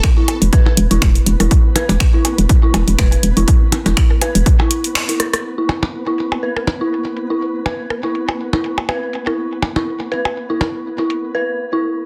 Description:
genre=minimal techno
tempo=122 BPM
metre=4/4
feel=swing 55% on 16ths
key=unclear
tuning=A4 = 440 Hz
part: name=electronic kick drum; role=drums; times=0.0-4.6 s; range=none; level=-15 LUFS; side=equal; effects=none
part: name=techno drum kit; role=drums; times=0.0-11.2 s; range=finger snaps, hi-hat, rim click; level=-22 LUFS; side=equal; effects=low-pass filter on hats, soft clipping on snare, low-pass filter on snare, low-pass filter on room
part: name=percussion blips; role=percussion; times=0.0-10.7 s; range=none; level=-24 LUFS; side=equal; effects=delay
part: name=flickering grainy texture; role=texture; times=0.0-11.3 s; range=B3 to B4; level=-32 LUFS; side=equal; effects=built-in reverb, sidechain pumping
part: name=dark detuned synth bell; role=riff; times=0.2-11.8 s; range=E4 to B4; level=-24 LUFS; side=equal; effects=chorus, sidechain pumping, low-pass filter, delay
part: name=hollow knocking FM bass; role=bass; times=0.4-4.4 s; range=E1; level=-16 LUFS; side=equal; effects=sidechain pumping
room=moderate studio reverb, RT60 0.6 s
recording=dense, heavily limited modern master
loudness=-16 LUFS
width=mono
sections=0.0-5.4 A section; 5.4-12.1 B section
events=break 5.0-5.4; band accent 5.0; drum fill 5.2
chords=0.0 E5; 5.4 N.C.

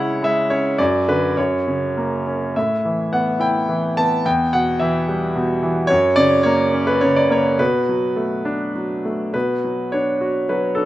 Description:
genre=classical, lyrical solo piano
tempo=98-112 BPM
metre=3/4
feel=rubato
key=B minor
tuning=A4 = 440 Hz
part: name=bright concert grand piano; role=solo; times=0.0-10.9 s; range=E2 to A5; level=-16 LUFS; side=equal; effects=none
room=light reverb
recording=close, detailed microphones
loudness=-16 LUFS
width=side -15 dB against mid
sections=0.0-9.3 A section; 9.3-10.9 A section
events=none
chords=0.0 C#m; 0.8 Bm/F#; 1.4 F#; 2.6 Asus2; 4.3 Em; 5.9 F#; 7.6 Bm7; 9.3 Bm

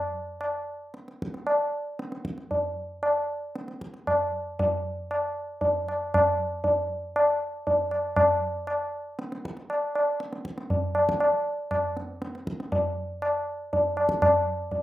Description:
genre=indian classical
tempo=118 BPM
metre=4/4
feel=straight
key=none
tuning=none
part: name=tabla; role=percussion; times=0.4-14.8 s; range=none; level=-25 LUFS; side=equal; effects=none
room=little or no reverb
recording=recorded outdoors, with no room sound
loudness=-25 LUFS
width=side -15 dB against mid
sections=0.0-4.6 A section; 4.6-14.8 B section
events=speeding up 0.0-14.8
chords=none

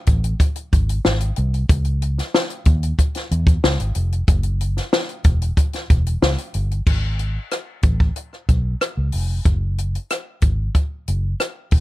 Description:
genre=lush 1970s-style soul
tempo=93 BPM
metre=4/4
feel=straight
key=unclear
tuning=A4 = 440 Hz
part: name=vintage muted fingered electric bass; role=bass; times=0.1-11.8 s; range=E1 to E2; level=-20 LUFS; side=equal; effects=none
part: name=compact cocktail drum kit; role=drums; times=0.1-11.8 s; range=crash cymbal, hi-hat, kick drum, rim click, snare drum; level=-18 LUFS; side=equal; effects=none
room=little or no reverb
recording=dark, warm production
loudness=-18 LUFS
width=side -17 dB against mid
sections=0.0-6.9 A section; 6.9-11.8 B section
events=none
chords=none

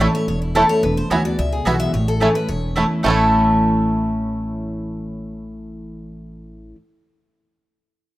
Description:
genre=bluegrass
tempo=217 BPM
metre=4/4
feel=straight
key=A major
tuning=A4 = 441 Hz
part: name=bluegrass banjo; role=melody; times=0.0-6.7 s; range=A3 to A4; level=-23 LUFS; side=right 3 dB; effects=none
part: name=picked steel-string acoustic guitar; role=melody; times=0.0-6.7 s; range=E4 to E5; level=-24 LUFS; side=left 2 dB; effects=none
part: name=picked steel-string acoustic guitar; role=accompaniment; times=0.0-6.8 s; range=E2 to F#4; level=-22 LUFS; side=equal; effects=none
part: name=mandolin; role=stabs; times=0.0-6.8 s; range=A3 to A5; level=-21 LUFS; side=right 1 dB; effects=slapback echo
part: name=upright bass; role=bass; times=0.0-6.7 s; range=E1 to D2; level=-25 LUFS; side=equal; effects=none
room=light reverb, small room ambience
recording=rough home demo mix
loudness=-16 LUFS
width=side -16 dB against mid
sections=0.0-3.0 A section; 3.0-5.3 B section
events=none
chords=0.0 A; 0.8 Eadd9; 1.9 A

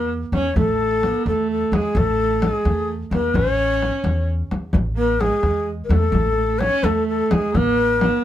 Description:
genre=Persian modal ensemble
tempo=86 BPM (dotted quarters)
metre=6/8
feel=straight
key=A dastgah chahargah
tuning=A4 = 440 Hz
part: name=breathy ney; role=melody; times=0.0-8.2 s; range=G#4 to C#5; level=-21 LUFS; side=left 3 dB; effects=none
part: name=rich viola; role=second line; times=0.0-8.2 s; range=G#3 to C#4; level=-24 LUFS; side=right 6 dB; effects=none
part: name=upright bass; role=bass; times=0.0-8.1 s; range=A1 to E2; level=-23 LUFS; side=equal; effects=none
part: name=frame drum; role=percussion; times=0.3-8.1 s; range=none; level=-23 LUFS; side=left 2 dB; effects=none
room=moderate studio reverb, RT60 0.6 s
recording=band playing live in one room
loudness=-17 LUFS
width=side -12 dB against mid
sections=0.0-8.2 A section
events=none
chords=none

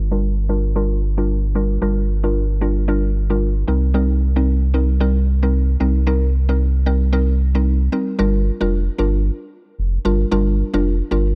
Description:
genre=afrobeats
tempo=113 BPM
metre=4/4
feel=swing 58% on 16ths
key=G minor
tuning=A4 = 443 Hz
part: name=warm sub bass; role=bass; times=0.0-11.3 s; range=F1 to C2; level=-20 LUFS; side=equal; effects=none
part: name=mallet-like synth pluck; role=accompaniment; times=0.1-11.3 s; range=G3 to Bb4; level=-24 LUFS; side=equal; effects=chorus, phaser, low-pass filter
room=little or no reverb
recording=dry, gritty hardware recording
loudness=-18 LUFS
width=mono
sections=0.0-8.2 A section; 8.2-11.3 B section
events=filter sweep on synth pluck 0.0-8.2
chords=0.0 Gm7; 3.7 Cm7; 8.2 Gm7

